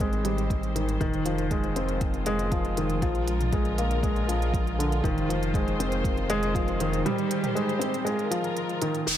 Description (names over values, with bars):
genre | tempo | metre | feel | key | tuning
piano and strings electronica | 119 BPM | 4/4 | straight | F dorian | A4 = 442 Hz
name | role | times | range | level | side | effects
dark studio string section | sustained chords | 0.0-9.2 s | D3 to C5 | -33 LUFS | left 1 dB | sidechain pumping
warm upright piano | riff | 0.0-9.2 s | D3 to C4 | -27 LUFS | equal | low-pass filter, tape echo
round analog bass | bass | 0.0-9.2 s | F1 to Bb1 | -30 LUFS | equal | tube saturation, sidechain pumping
electronic kick drum | drums | 0.0-6.7 s | none | -29 LUFS | equal | none
organic electronic drum kit | drums | 0.0-9.2 s | crash cymbal, hi-hat, toms | -38 LUFS | right 2 dB | low-pass filter on hats, low-pass filter on toms, low-pass filter on cymbals
downlifter | sound effects | 9.1-9.2 s | none | -22 LUFS | equal | none
room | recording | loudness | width
light reverb | none | -24 LUFS | side -11 dB against mid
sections
0.0-9.1 A section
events
fade-in on string section 0.0-9.1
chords
0.0 Abmaj7; 1.0 Fm7; 3.0 Bb7; 5.0 Fm7; 7.1 Abmaj7; 8.1 Bb7sus4